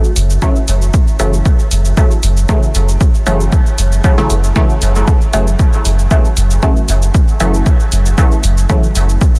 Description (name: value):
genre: dub techno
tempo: 116 BPM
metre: 4/4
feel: swing 53% on 16ths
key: F# minor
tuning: A4 = 436 Hz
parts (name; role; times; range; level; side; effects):
- electronic shaker and hi-hat; drums; 0.0-9.4 s; none; -26 LUFS; equal; none
- soft dub sub bass; bass; 0.2-9.2 s; F#1; -15 LUFS; equal; tube saturation, sidechain pumping
- filtered dub chord stab; stabs; 0.4-8.9 s; C#3 to A3; -20 LUFS; equal; chorus, phaser, sidechain pumping, dub echo
- electronic kick drum; drums; 0.4-9.3 s; none; -14 LUFS; equal; none
room: digital ambience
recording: dense, heavily limited modern master, vinyl crackle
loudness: -12 LUFS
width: mono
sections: 0.0-9.4 A section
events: none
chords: 0.0 F#m7